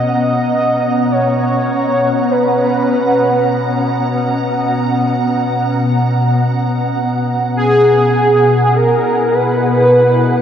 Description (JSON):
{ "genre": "ambient", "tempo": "free time", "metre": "none", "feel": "none", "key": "unclear", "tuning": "A4 = 439 Hz", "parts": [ { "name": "warm velvety synth lead", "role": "melody", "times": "0.0-10.4 s", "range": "G#4 to D#5", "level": "-14 LUFS", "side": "right 1 dB", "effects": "chorus, tape echo" }, { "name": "glassy FM pad", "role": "sustained chords", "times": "0.0-10.4 s", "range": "B2 to A#5", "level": "-14 LUFS", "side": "equal", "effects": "ensemble chorus, built-in reverb" } ], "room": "wet huge ambient reverb, RT60 8.4 s", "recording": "in a vast, echoing space, nothing above 11.0 kHz", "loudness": "-12 LUFS", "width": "side -9 dB against mid", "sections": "0.0-10.4 A section", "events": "none", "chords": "0.0 Bmaj7; 7.0 C#m7/B" }